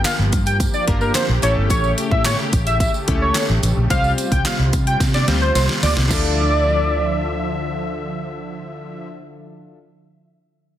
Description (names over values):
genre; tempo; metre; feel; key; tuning
dance-pop; 109 BPM; 4/4; straight; D minor; A4 = 443 Hz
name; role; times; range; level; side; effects
octave-doubled lead; melody; 0.0-7.7 s; Bb4 to G5; -22 LUFS; equal; chorus, sidechain pumping
chorused retro synth keys; accompaniment; 0.0-9.8 s; G3 to C5; -27 LUFS; left 3 dB; sidechain pumping
sweeping resonant pad; sustained chords; 0.0-9.1 s; C3 to E5; -27 LUFS; equal; chorus, sidechain pumping
vintage muted fingered electric bass; bass; 0.0-9.8 s; G1 to C3; -20 LUFS; equal; sidechain pumping
pop drum kit; drums; 0.0-6.2 s; crash cymbal, handclaps, hi-hat, kick drum, snare drum; -21 LUFS; equal; none
tambourine; percussion; 0.1-6.4 s; none; -33 LUFS; right 8 dB; none
room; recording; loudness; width
light reverb, digital ambience; dense, heavily limited modern master; -16 LUFS; side -11 dB against mid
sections
0.0-6.1 A section; 6.1-8.3 B section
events
drop 0.0-6.1; drum fill 5.0-6.1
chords
0.0 Gm7; 1.4 A7; 3.9 Csus4; 6.1 Dmadd9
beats
0.05 0.60 1.15 | 1.70 2.25 2.80 3.35 | 3.90 4.45 5.00 5.55 | 6.11 6.66 7.21 7.76